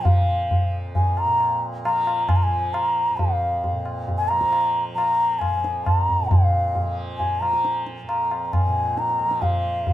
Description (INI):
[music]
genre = indian classical, Hindustani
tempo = 135 BPM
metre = 7/4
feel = straight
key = unclear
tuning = A4 = 439 Hz
[part]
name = mellow bansuri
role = melody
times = 0.0-9.9 s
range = F5 to Bb5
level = -21 LUFS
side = left 1 dB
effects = none
[part]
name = tanpura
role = drone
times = 0.0-9.9 s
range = F2 to F3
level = -32 LUFS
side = right 2 dB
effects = none
[part]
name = tabla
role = percussion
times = 0.1-9.9 s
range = none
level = -23 LUFS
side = equal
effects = none
[sound]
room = moderate studio reverb, RT60 0.7 s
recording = band playing live in one room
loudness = -19 LUFS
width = side -13 dB against mid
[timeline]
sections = 0.0-9.9 A section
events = none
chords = none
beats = | 0.06 0.50 0.95 1.40 1.84 2.29 2.74 | 3.18 3.63 4.07 4.52 4.96 5.41 5.86 | 6.30 6.75 7.19 7.63 8.08 8.52 8.97 | 9.41 9.86